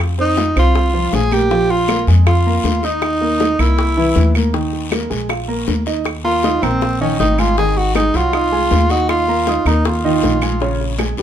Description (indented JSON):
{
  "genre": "Afro-Cuban jazz",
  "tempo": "158 BPM",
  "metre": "4/4",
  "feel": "straight",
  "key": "unclear",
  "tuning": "A4 = 440 Hz",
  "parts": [
    { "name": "warm concert grand piano", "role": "accompaniment", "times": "0.0-11.2 s", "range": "Db3 to Eb6", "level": "-20 LUFS", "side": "right 3 dB", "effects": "none" },
    { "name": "upright bass", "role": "bass", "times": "0.0-11.2 s", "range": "Ab1 to F2", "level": "-18 LUFS", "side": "equal", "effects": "none" },
    { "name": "bongos", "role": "percussion", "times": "0.0-11.2 s", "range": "none", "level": "-25 LUFS", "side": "left 6 dB", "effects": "none" },
    { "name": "claves", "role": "percussion", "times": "0.0-11.2 s", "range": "none", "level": "-28 LUFS", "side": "right 5 dB", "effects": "none" },
    { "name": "congas", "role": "percussion", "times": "0.0-11.2 s", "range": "none", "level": "-25 LUFS", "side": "left 3 dB", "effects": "none" },
    { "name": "breathy tenor saxophone", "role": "melody", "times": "0.2-11.0 s", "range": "C4 to Ab4", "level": "-17 LUFS", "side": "right 1 dB", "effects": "none" },
    { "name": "guiro", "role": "percussion", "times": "0.4-11.2 s", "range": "none", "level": "-31 LUFS", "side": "left 6 dB", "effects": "none" }
  ],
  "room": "moderate studio reverb, RT60 0.7 s",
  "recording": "minimal, uncompressed stereo recording",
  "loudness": "-13 LUFS",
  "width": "side -10 dB against mid",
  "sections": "0.0-6.1 A section; 6.1-11.2 A section",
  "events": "none",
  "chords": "0.0 F5; 1.5 Bb5; 3.0 Eb5; 3.8 C7; 4.5 Eb5; 5.3 Bb5; 6.1 Ebsus2; 7.6 Ab6; 9.1 Ebsus2; 10.6 Bbm7"
}